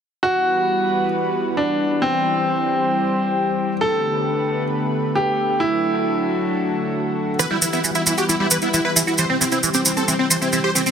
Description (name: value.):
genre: uplifting trance.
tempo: 134 BPM.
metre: 4/4.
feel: straight.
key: E minor.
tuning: A4 = 440 Hz.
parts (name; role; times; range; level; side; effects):
clear baby grand piano; second line; 0.2-7.3 s; C4 to A4; -20 LUFS; equal; dub echo.
lush unison pad; sustained chords; 0.2-10.9 s; D3 to C5; -23 LUFS; left 1 dB; chorus.
dense compressed supersaw; melody; 7.4-10.9 s; C4 to C5; -21 LUFS; equal; dub echo.
liquid acid bass; arpeggios; 7.4-10.9 s; E3 to G4; -23 LUFS; right 2 dB; phaser, analog chorus, dub echo.
maracas; percussion; 7.4-10.9 s; none; -20 LUFS; right 2 dB; none.
room: moderate huge ambient reverb, RT60 4.5 s.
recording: dense, heavily limited modern master.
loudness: -17 LUFS.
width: side -7 dB against mid.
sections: 0.2-10.9 A section.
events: none.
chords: 0.2 Emadd9; 2.0 C; 3.8 Gadd9; 5.6 D; 7.4 Emadd9; 9.2 C.